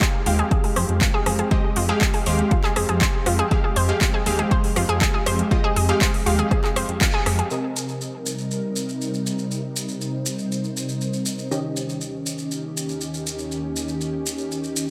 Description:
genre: progressive house.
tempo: 120 BPM.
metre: 4/4.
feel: straight.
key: F minor.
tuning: A4 = 442 Hz.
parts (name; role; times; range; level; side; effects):
evolving wavetable pad; sustained chords; 0.2-14.9 s; Eb2 to C5; -32 LUFS; equal; ensemble chorus, built-in reverb, sidechain pumping.
analog pluck; arpeggios; 0.0-7.4 s; F4 to C5; -28 LUFS; equal; chorus, sidechain pumping, delay.
supersaw stab; stabs; 0.0-14.9 s; C3 to F5; -29 LUFS; equal; sidechain pumping, low-pass filter, delay.
electronic kick drum; drums; 0.0-7.1 s; none; -24 LUFS; equal; overdrive.
house drum kit; drums; 0.0-7.5 s; handclaps, hi-hat, rim click; -28 LUFS; equal; overdrive.
dark detuned saw bass; bass; 0.3-7.4 s; Eb2 to F2; -26 LUFS; equal; sidechain pumping.
maracas; percussion; 7.5-14.9 s; none; -32 LUFS; equal; none.
room: light reverb.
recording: none.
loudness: -22 LUFS.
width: mono.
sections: 0.0-7.5 A section; 7.5-14.9 B section.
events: band accent 7.0; filter sweep on ambient pad 7.5-14.9.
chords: 0.0 Fmadd9; 7.5 Cm7; 11.5 Eb7.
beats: 0.01 0.51 1.01 | 1.51 2.01 2.51 3.01 | 3.51 4.01 4.51 5.01 | 5.51 6.01 6.51 7.01 | 7.51 8.01 8.51 9.01 | 9.51 10.01 10.51 11.01 | 11.51 12.01 12.51 13.01 | 13.51 14.01 14.51.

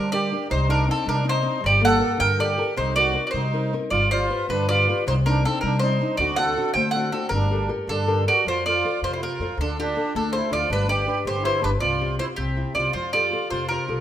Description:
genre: italian folk, Italian serenade.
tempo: 106 BPM (dotted quarters).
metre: 6/8.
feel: rubato.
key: G harmonic minor, F major from 8.4 s.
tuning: A4 = 445 Hz.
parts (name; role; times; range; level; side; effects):
mandolin; melody; 0.0-14.0 s; G4 to G5; -23 LUFS; equal; none.
accordion; second line; 0.0-14.0 s; C4 to C5; -28 LUFS; right 4 dB; light tremolo tuning.
nylon-string guitar; accompaniment; 0.0-14.0 s; C3 to D5; -28 LUFS; left 4 dB; none.
upright bass; bass; 0.0-14.0 s; G1 to G3; -26 LUFS; equal; none.
room: moderate recital hall reverb, RT60 1.6 s.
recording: minimal, uncompressed stereo recording.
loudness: -20 LUFS.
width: side -11 dB against mid.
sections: 0.0-8.4 A section; 8.4-14.0 B section.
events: none.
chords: 0.0 Gm; 0.5 Cmadd9; 1.6 Gmadd9; 2.8 Cm7; 3.9 G7; 5.1 Cmadd9; 6.2 D7; 7.3 Gmadd9; 8.4 F; 9.6 Dm; 10.7 G; 11.8 Csus4; 12.4 C; 12.9 Fadd9.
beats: | 0.50 1.06 | 1.63 2.19 | 2.76 3.33 | 3.91 4.49 | 5.06 5.62 | 6.18 6.74 | 7.29 7.86 | 8.44 9.01 | 9.58 10.14 | 10.69 11.25 | 11.81 12.37 | 12.94 13.51.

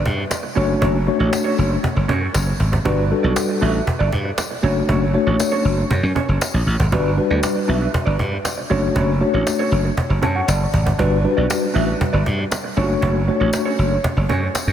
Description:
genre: early-eighties boogie funk.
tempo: 118 BPM.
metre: 4/4.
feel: straight.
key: D major.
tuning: A4 = 442 Hz.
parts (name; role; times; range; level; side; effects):
mellow electric guitar; riff; 0.0-14.7 s; C#4 to E5; -26 LUFS; right 5 dB; lush chorus.
slap bass; bass; 0.1-14.7 s; F#1 to G2; -19 LUFS; equal; none.
cajon; drums; 0.1-14.7 s; none; -25 LUFS; equal; none.
tambourine; percussion; 0.3-14.7 s; none; -33 LUFS; left 5 dB; none.
mellow tine electric piano; accompaniment; 0.6-14.0 s; G3 to A5; -21 LUFS; left 2 dB; medium stereo tremolo.
room: wet huge ambient reverb, RT60 3.8 s.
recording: dreamy mix soaked in reverb.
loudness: -16 LUFS.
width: side -10 dB against mid.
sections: 0.0-14.7 A section.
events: tine electric piano fill 10.0-11.0.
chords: 0.0 Gmaj7; 0.6 Dmaj7/F#; 2.9 Gmaj7; 4.6 Dmaj7/F#; 6.9 Gmaj7; 8.7 Dmaj7/F#; 11.0 Gmaj7; 12.8 Dmaj7/F#.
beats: 0.31 | 0.82 1.33 1.84 2.35 | 2.85 3.36 3.87 4.38 | 4.89 5.40 5.91 6.41 | 6.92 7.43 7.94 8.45 | 8.96 9.46 9.97 10.48 | 10.99 11.50 12.01 12.52 | 13.02 13.53 14.04 14.55.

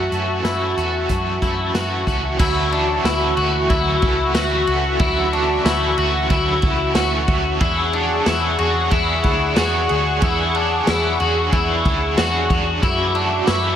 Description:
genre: dream pop.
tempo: 92 BPM.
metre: 4/4.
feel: straight.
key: D lydian.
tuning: A4 = 440 Hz.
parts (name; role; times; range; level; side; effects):
cranked stack guitar; accompaniment; 0.0-13.8 s; F#2 to C#5; -25 LUFS; right 4 dB; overdrive, tremolo, ensemble chorus.
warm analog pad; sustained chords; 0.0-13.8 s; F#4 to D6; -22 LUFS; equal; chorus, tremolo.
electric guitar at the edge of break-up; arpeggios; 0.0-13.8 s; D4 to F#4; -21 LUFS; left 3 dB; ensemble chorus, digital delay.
vintage muted picked electric bass; bass; 0.0-13.8 s; C#2 to F#2; -24 LUFS; equal; none.
vintage drum kit; drums; 0.1-13.6 s; crash cymbal, hi-hat, kick drum, ride cymbal, snare drum, tambourine; -22 LUFS; equal; none.
room: moderate huge ambient reverb, RT60 4.3 s.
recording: none.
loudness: -16 LUFS.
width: side -9 dB against mid.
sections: 0.0-2.4 A section; 2.4-13.8 B section.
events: none.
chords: 0.0 F#m7; 2.4 Dmaj9; 7.6 E13; 12.8 Dmaj9.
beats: 0.43 1.09 1.74 | 2.39 3.04 3.70 4.35 | 5.00 5.65 6.30 6.96 | 7.61 8.26 8.91 9.57 | 10.22 10.87 11.52 12.17 | 12.83 13.48.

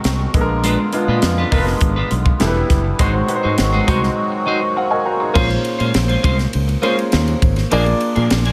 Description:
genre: polished 1980s jazz-funk pop.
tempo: 102 BPM.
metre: 4/4.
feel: straight.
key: unclear.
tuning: A4 = 440 Hz.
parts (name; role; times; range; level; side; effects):
warm baby grand piano; accompaniment; 0.0-8.5 s; G3 to Bb5; -22 LUFS; equal; subtle chorus.
accordion; sustained chords; 0.0-5.3 s; D3 to Gb4; -26 LUFS; equal; light tremolo tuning.
fretless electric bass; bass; 0.0-8.5 s; E1 to Bb2; -21 LUFS; equal; ensemble chorus.
crisp fusion drum kit; drums; 0.0-8.5 s; crash cymbal, hi-hat, kick drum, ride cymbal, snare drum; -22 LUFS; equal; gated reverb.
clean electric guitar; riff; 0.1-8.5 s; F3 to C5; -25 LUFS; equal; lush chorus.
room: light reverb, studio ambience.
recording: faint mains hum.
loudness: -17 LUFS.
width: mono.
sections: 0.0-5.4 A section; 5.4-8.5 B section.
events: grand piano fill 4.2-5.4.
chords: 0.3 Bb7b9; 2.4 Em7; 3.0 Ab7; 5.4 Bbm9; 7.7 Bb7.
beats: 0.05 | 0.64 1.23 1.82 2.41 | 3.00 3.59 4.18 4.77 | 5.36 5.95 6.54 7.12 | 7.71 8.30.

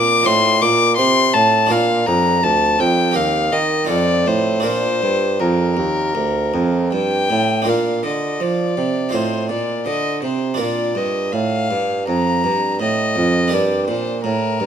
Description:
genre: classical, baroque-style sonata movement with continuo.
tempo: 82 BPM.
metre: 4/4.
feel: straight.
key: Bb major.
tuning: A4 = 440 Hz.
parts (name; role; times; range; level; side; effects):
rich violin; melody; 0.0-14.7 s; Bb4 to D6; -18 LUFS; left 4 dB; none.
harpsichord; accompaniment; 0.0-14.7 s; D2 to C5; -20 LUFS; right 3 dB; none.
mellow bassoon; bass; 0.0-14.7 s; D2 to F3; -21 LUFS; right 3 dB; none.
room: moderate recital hall reverb, RT60 1.4 s.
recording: close, detailed microphones.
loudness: -15 LUFS.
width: side -8 dB against mid.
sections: 0.0-7.7 A section; 7.7-14.7 B section.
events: none.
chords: 0.3 F7/A; 1.7 Bb; 3.2 Eb; 3.9 F7; 4.6 Bb; 9.1 F7/A; 10.6 Bb; 13.5 Gm.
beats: 0.26 0.98 | 1.71 2.43 3.15 3.89 | 4.65 5.40 6.16 6.93 | 7.68 8.42 9.15 9.87 | 10.60 11.33 12.08 12.81 | 13.53 14.25.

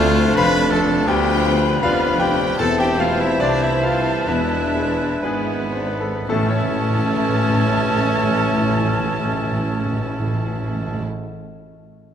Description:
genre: classical, romantic movement for piano and orchestra.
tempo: 54-86 BPM.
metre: 4/4.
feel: rubato.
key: unclear.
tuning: A4 = 439 Hz.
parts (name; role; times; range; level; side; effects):
bright concert grand piano; melody; 0.0-12.1 s; D2 to B5; -22 LUFS; left 3 dB; none.
rich studio violin section; melody; 0.0-11.0 s; D4 to F4; -32 LUFS; left 3 dB; none.
rich studio violin section; second line; 0.0-11.0 s; B4 to B5; -31 LUFS; left 1 dB; none.
silver concert flute; second line; 0.0-11.0 s; G#5 to B5; -28 LUFS; left 1 dB; none.
warm clarinet; second line; 0.0-11.0 s; C#4 to E4; -28 LUFS; left 1 dB; none.
warm oboe; second line; 0.0-11.0 s; A4 to C5; -30 LUFS; right 1 dB; none.
dark bassoon; accompaniment; 0.0-11.0 s; E3 to A3; -28 LUFS; equal; none.
rich studio viola section; accompaniment; 0.0-11.0 s; G#3 to F4; -29 LUFS; right 2 dB; none.
dark French horn section; sustained chords; 0.0-11.0 s; E3 to D4; -28 LUFS; left 5 dB; none.
bright trumpet; stabs; 0.0-11.0 s; B3 to B4; -28 LUFS; right 2 dB; none.
mellow tuba; bass; 0.0-11.0 s; E1 to D2; -28 LUFS; right 4 dB; none.
rich studio cello section; bass; 0.0-11.0 s; C2 to A2; -28 LUFS; right 2 dB; none.
rich studio double bass section; bass; 0.0-11.0 s; E1 to D2; -27 LUFS; right 3 dB; none.
timpani; percussion; 2.6-11.1 s; E2 to A2; -26 LUFS; equal; none.
room: moderate scoring stage reverb, RT60 2.1 s.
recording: close, detailed microphones.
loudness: -17 LUFS.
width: side -9 dB against mid.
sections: 0.0-6.3 A section; 6.3-10.3 B section.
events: slowing down 0.0-6.3.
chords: 0.0 Dm7; 1.1 Bdim/D; 2.6 Am/E; 4.3 E7; 6.3 A.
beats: 0.36 1.08 1.82 | 2.59 3.40 4.28 5.24 | 6.29 7.28 8.27 9.27.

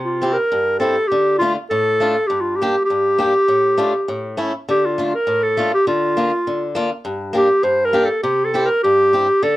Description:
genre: alpine folk.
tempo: 101 BPM.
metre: 2/4.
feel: straight.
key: unclear.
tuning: A4 = 440 Hz.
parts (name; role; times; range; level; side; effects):
warm clarinet; melody; 0.0-9.6 s; F4 to C5; -16 LUFS; equal; none.
fingerpicked swing-style acoustic guitar; accompaniment; 0.0-9.6 s; G2 to G4; -22 LUFS; left 1 dB; none.
room: light reverb.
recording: none.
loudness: -15 LUFS.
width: side -16 dB against mid.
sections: 0.0-9.6 A section.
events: none.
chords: 0.0 C; 1.1 Dm; 2.3 Gm; 3.5 Dm/A; 4.1 A; 4.7 Dm; 5.9 Bb/D; 7.1 Gm; 8.2 C.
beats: 0.52 | 1.12 1.72 | 2.31 2.90 | 3.49 4.08 | 4.68 5.28 | 5.87 6.46 | 7.05 7.64 | 8.23 8.83 | 9.42.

